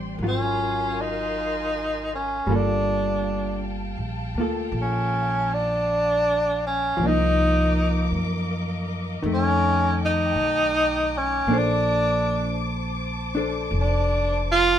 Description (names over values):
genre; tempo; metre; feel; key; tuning
jazz ballad; 53 BPM; 4/4; swing 66% on 8ths; Bb major; A4 = 439 Hz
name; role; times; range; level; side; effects
hollow-body jazz guitar; accompaniment; 0.0-14.8 s; Eb3 to C5; -27 LUFS; left 1 dB; none
warm studio string section; sustained chords; 0.0-14.8 s; A4 to D6; -33 LUFS; left 1 dB; none
upright bass; bass; 0.0-14.8 s; F1 to Gb2; -27 LUFS; equal; none
warm tenor saxophone; melody; 0.3-14.8 s; Db4 to F4; -22 LUFS; equal; none
room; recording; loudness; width
moderate club reverb, RT60 0.8 s; minimal, uncompressed stereo recording; -21 LUFS; side -10 dB against mid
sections
0.0-14.8 A section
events
tenor saxophone solo 0.0-14.8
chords
0.2 Ab13; 2.5 Gm9; 7.0 Cm11; 9.2 F13; 11.5 Bbmaj9